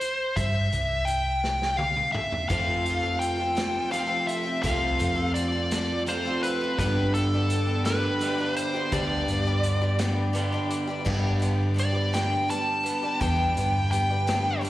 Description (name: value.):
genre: folk rock and heartland rock.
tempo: 56 BPM (dotted quarters).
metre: 6/8.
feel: straight.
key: unclear.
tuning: A4 = 440 Hz.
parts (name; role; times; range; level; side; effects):
nasal lead guitar with a parked wah; melody; 0.0-14.6 s; A4 to A5; -27 LUFS; equal; overdrive, slapback echo, tape echo.
vintage drum kit; drums; 0.0-14.7 s; crash cymbal, hi-hat, kick drum, snare drum, toms; -33 LUFS; right 1 dB; none.
hollow-body short-scale picked electric bass; bass; 0.4-14.7 s; C2 to G2; -27 LUFS; equal; none.
picked twelve-string acoustic guitar; accompaniment; 2.5-14.7 s; G2 to A4; -32 LUFS; left 2 dB; slapback echo.
mellow tonewheel organ; sustained chords; 2.5-14.7 s; C4 to D5; -39 LUFS; right 2 dB; none.
electric guitar through a small old amp; riff; 2.5-14.7 s; F2 to G4; -32 LUFS; right 1 dB; spring reverb, slapback echo.
room: light reverb.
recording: live gig heard through the venue's PA, recital hall reverb.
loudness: -23 LUFS.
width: side -15 dB against mid.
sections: 0.0-11.1 A section; 11.1-14.7 B section.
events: drum fill 1.4-2.5; lead electric guitar solo 11.1-14.7.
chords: 0.0 C; 2.5 F; 6.8 G.